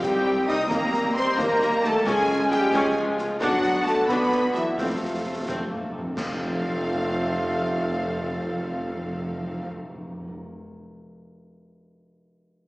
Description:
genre	cinematic, heroic adventure film score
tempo	88 BPM (dotted quarters)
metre	6/8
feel	straight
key	F mixolydian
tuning	A4 = 441 Hz
part	rich studio violin section	melody	0.0-9.7 s	E5 to Eb6	-35 LUFS	left 1 dB	none
part	bright symphonic violin section	second line	0.0-9.7 s	E5 to Eb6	-34 LUFS	left 1 dB	none
part	mellow clarinet	second line	0.0-9.7 s	A3 to A4	-31 LUFS	equal	none
part	mellow large flute ensemble	second line	0.0-9.7 s	E5 to Eb6	-32 LUFS	equal	none
part	clear symphonic viola section	accompaniment	0.0-9.7 s	Eb3 to C5	-32 LUFS	equal	none
part	mellow French horn section	sustained chords	0.0-9.7 s	E4 to Eb5	-27 LUFS	equal	none
part	mellow tuba	bass	0.0-9.7 s	F1 to Eb2	-33 LUFS	equal	none
part	rich symphonic cello section	bass	0.0-9.7 s	E3 to Eb4	-32 LUFS	equal	none
part	rich symphonic double bass section	bass	0.0-9.7 s	B1 to F2	-38 LUFS	right 1 dB	none
part	concert snare drum, concert bass drum and clash cymbals	drums	0.0-6.3 s	none	-36 LUFS	equal	none
part	bright trombone section	sustained chords	0.5-9.7 s	C3 to B3	-32 LUFS	equal	none
part	timpani	percussion	4.8-10.3 s	F2	-37 LUFS	equal	none
part	clash cymbals and concert bass drum	percussion	6.2-7.0 s	none	-37 LUFS	equal	none
room	wet scoring stage reverb, RT60 1.7 s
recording	heard from further back in the room, small speaker sound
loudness	-22 LUFS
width	side -21 dB against mid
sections	0.0-6.2 A section; 6.2-8.9 B section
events	timpani fill 4.8-6.2; band accent 6.2-6.6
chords	0.0 Cm; 0.7 Eb; 2.1 Db; 3.4 Bm; 4.8 F

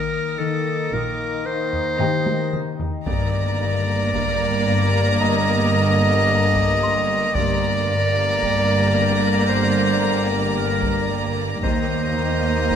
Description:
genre	cinematic, suspense film score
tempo	56 BPM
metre	4/4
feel	straight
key	G minor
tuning	A4 = 441 Hz
part	warm chamber violin section	melody	0.0-12.8 s	Bb5	-27 LUFS	left 1 dB	none
part	bright clarinet	second line	0.0-12.8 s	A4 to Eb5	-23 LUFS	right 1 dB	none
part	warm chamber violin section	second line	0.0-12.8 s	D5 to Eb5	-30 LUFS	equal	none
part	warm chamber viola section	accompaniment	0.0-12.8 s	Bb3	-27 LUFS	right 1 dB	none
part	deep dark ambient pad	sustained chords	0.0-12.8 s	Eb4 to D6	-34 LUFS	right 2 dB	chorus, built-in reverb
part	mellow French horn section	sustained chords	0.0-12.8 s	D3 to Bb4	-30 LUFS	left 5 dB	none
part	concert harp	riff	0.0-12.8 s	G2 to Eb4	-26 LUFS	left 9 dB	none
part	felt-muted upright piano	texture	0.0-11.7 s	G4 to C6	-35 LUFS	left 2 dB	none
part	warm chamber violin section	texture	0.0-2.5, 11.6-12.8 s	Bb5 to Bb6	-37 LUFS	left 2 dB	none
part	dark chamber cello section	bass	0.9-12.8 s	Eb2 to Bb2	-26 LUFS	right 2 dB	none
part	warm chamber double bass section	bass	0.9-12.8 s	G1 to Eb2	-26 LUFS	right 5 dB	none
part	taiko ensemble	drums	1.7-12.8 s	none	-29 LUFS	right 1 dB	none
room	moderate scoring stage reverb, RT60 2.1 s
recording	close, detailed microphones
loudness	-18 LUFS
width	side -8 dB against mid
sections	0.0-12.8 A section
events	drum fill 2.0-3.1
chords	0.0 Eb5; 3.1 Gm; 11.6 Eb5

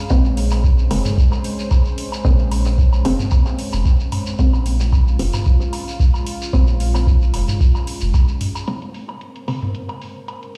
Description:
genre	dub techno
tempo	112 BPM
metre	4/4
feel	swing 54% on 16ths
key	Bb minor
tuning	A4 = 440 Hz
part	dark analog pad	sustained chords	0.0-10.6 s	Ab3 to C5	-32 LUFS	equal	chorus, sidechain pumping
part	filtered dub chord stab	stabs	0.1-9.7 s	Db3 to C4	-28 LUFS	equal	chorus, phaser, sidechain pumping, dub echo
part	soft dub sub bass	bass	0.1-8.1 s	F1 to Bb1	-20 LUFS	equal	sidechain pumping
part	electronic kick drum	drums	0.1-8.3 s	none	-18 LUFS	equal	studio reverb
part	electronic woodblock and toms	percussion	0.1-10.4 s	none	-31 LUFS	equal	sidechain pumping on perc, studio reverb, sidechain pumping on toms, dub echo
part	shekere	percussion	0.1-8.7 s	none	-36 LUFS	equal	none
part	electronic hi-hat	drums	0.4-10.6 s	none	-37 LUFS	equal	overdrive, low-pass filter on hats, studio reverb
room	light reverb, digital ambience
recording	played on a big sound system in a bare room, stone room reverb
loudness	-18 LUFS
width	mono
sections	0.0-8.7 A section; 8.7-10.6 B section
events	filter sweep on analog synth pad 8.7-10.6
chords	0.0 Bbm9

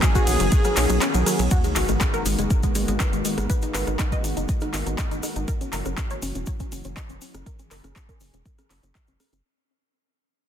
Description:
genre	progressive house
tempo	121 BPM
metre	4/4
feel	straight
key	G# minor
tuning	A4 = 438 Hz
part	wide unison lead	melody	0.0-1.4 s	G#4	-29 LUFS	left 1 dB	dub echo
part	lush unison pad	sustained chords	0.0-9.4 s	D#3 to G#4	-31 LUFS	equal	chorus, sidechain pumping
part	wide unison pluck	arpeggios	0.0-9.4 s	F#3 to E5	-28 LUFS	equal	vintage 12-bit sampler grit, sidechain pumping, ping-pong delay
part	deep house drum kit	drums	0.0-9.4 s	handclaps, hi-hat, ride cymbal, rim click	-29 LUFS	equal	overdrive
part	electronic kick drum	drums	0.0-9.1 s	none	-23 LUFS	equal	overdrive
part	cabasa	percussion	0.0-9.4 s	none	-34 LUFS	left 3 dB	none
part	tight sequencer bass	bass	0.3-9.4 s	E1 to B1	-26 LUFS	equal	sidechain pumping
part	sub drop	sound effects	1.6-3.5 s	none	-32 LUFS	right 1 dB	none
room	little or no reverb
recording	dense, heavily limited modern master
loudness	-21 LUFS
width	side -9 dB against mid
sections	0.0-1.5 A section; 1.5-9.4 B section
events	drop 0.0-1.5; kick drops out 1.0-1.5; fade-out 1.5-9.4; impact 1.5-3.5; filter sweep on synth pluck 1.5-9.4; filter sweep on analog synth pad 1.5-9.4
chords	0.0 Bmaj9; 1.5 G#m9; 5.5 F#7

